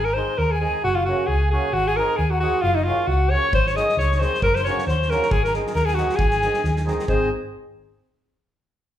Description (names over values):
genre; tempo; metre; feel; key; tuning
balkan folk, Balkan wedding band; 134 BPM; 2/4; swing 56% on 16ths; Ab mixolydian; A4 = 440 Hz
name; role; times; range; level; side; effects
clear alto saxophone; melody; 0.0-7.3 s; Eb4 to Eb5; -22 LUFS; equal; none
breathy bright pan flute; second line; 0.0-7.3 s; C4 to Eb6; -28 LUFS; left 4 dB; none
hollow-body short-scale fingered electric bass; bass; 0.0-7.3 s; Gb1 to Eb2; -24 LUFS; equal; none
mellow accordion; accompaniment; 0.2-7.3 s; Db3 to Ab4; -29 LUFS; right 2 dB; none
loose indie drum kit; percussion; 3.5-7.3 s; kick drum, snare drum; -26 LUFS; equal; none
room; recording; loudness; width
moderate large studio reverb, RT60 1.1 s; band playing live in one room; -18 LUFS; side -11 dB against mid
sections
0.0-7.1 A section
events
none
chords
0.0 Ab; 0.8 Gb; 1.7 Ab; 2.6 Gb; 3.5 Ab; 4.4 Gb; 5.3 Ab